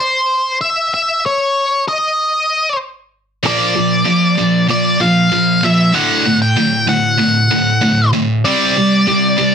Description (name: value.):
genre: rock.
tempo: 96 BPM.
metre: 4/4.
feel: straight.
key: unclear.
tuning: A4 = 440 Hz.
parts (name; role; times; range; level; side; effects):
octave-fuzz lead guitar; melody; 0.0-9.5 s; C5 to G5; -14 LUFS; left 1 dB; distortion.
heavy high-gain guitar; riff; 3.4-9.5 s; D2 to C4; -13 LUFS; right 1 dB; distortion.
room: light reverb.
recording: dense, heavily limited modern master.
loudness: -12 LUFS.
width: side -7 dB against mid.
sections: 0.0-3.4 A section; 3.4-9.5 B section.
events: none.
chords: 0.0 N.C.; 3.4 Bb; 5.9 D; 8.5 Csus2.